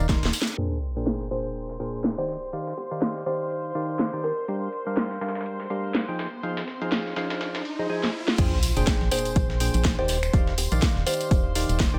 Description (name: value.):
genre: piano house.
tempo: 123 BPM.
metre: 4/4.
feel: swing 57% on 16ths.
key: unclear.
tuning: A4 = 440 Hz.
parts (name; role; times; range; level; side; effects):
percussive organ stab; riff; 0.0-12.0 s; Bb2 to C6; -33 LUFS; equal; chorus, sidechain pumping.
organ-like FM bass; bass; 0.0-0.3, 8.4-12.0 s; Eb1 to Bb1; -28 LUFS; equal; sidechain pumping.
breakbeat sampler-style drum kit; drums; 0.1-11.9 s; hi-hat, snare drum; -40 LUFS; equal; high-pass filter on snare, low-pass filter on snare, high-pass filter on hats, low-pass filter on hats.
electronic kick drum; drums; 0.1-0.2, 8.4-11.9 s; none; -26 LUFS; equal; overdrive.
garage drum kit; drums; 0.1-11.9 s; crash cymbal, finger snaps, hi-hat, snare drum; -30 LUFS; equal; low-pass filter on hats, low-pass filter on snare, low-pass filter on cymbals, low-pass filter on room.
tambourine; percussion; 0.1-0.6, 8.4-11.9 s; none; -39 LUFS; equal; none.
rich chamber violin section; sustained chords; 0.6-12.0 s; C5 to C6; -41 LUFS; equal; sidechain pumping, low-pass filter.
sub drop and riser; sound effects; 0.6-10.3 s; none; -36 LUFS; equal; none.
kalimba; melody; 1.3-4.5, 9.1-11.2 s; G4 to C5; -34 LUFS; equal; tape echo.
room: light reverb, digital ambience.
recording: low-pass filter.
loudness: -26 LUFS.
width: mono.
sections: 0.6-8.4 A section; 8.4-12.0 B section.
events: drum fill 0.1-0.6, 8.0-8.4; band accent 0.4; impact 0.6-2.5, 8.4-10.3; filter sweep on synth stab 0.6-8.4; filter sweep on violin section 0.6-8.4; filter sweep 0.6-8.4; riser 6.2-8.4; drop 8.4-12.0.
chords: 0.0 Ebmaj7(no3); 0.6 Bb13; 2.3 Ebmaj9; 4.5 Gm7; 6.2 Fm7; 8.4 Bb13; 10.1 Ebmaj9.